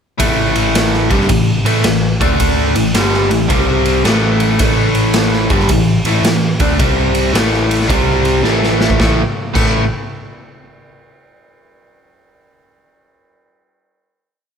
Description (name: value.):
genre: blues rock power trio and southern rock.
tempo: 109 BPM.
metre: 4/4.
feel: swing 65% on 8ths.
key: A minor.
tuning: A4 = 440 Hz.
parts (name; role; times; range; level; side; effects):
biting overdriven guitar; riff; 0.2-9.8 s; G2 to D4; -14 LUFS; equal; spring reverb.
overdriven picked electric bass; bass; 0.2-9.9 s; G1 to D2; -18 LUFS; right 1 dB; none.
raw garage drum kit; drums; 0.2-9.7 s; crash cymbal, kick drum, ride cymbal, snare drum; -16 LUFS; equal; none.
room: little or no reverb.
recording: none.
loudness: -11 LUFS.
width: side -7 dB against mid.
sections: 0.2-9.0 riff; 9.0-11.2 final chord.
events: drum fill 8.4-9.0.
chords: 0.2 A5; 2.1 D5; 2.7 A5; 3.5 C5; 4.0 A5; 6.8 C5; 7.3 A5; 7.9 C5; 8.4 A5.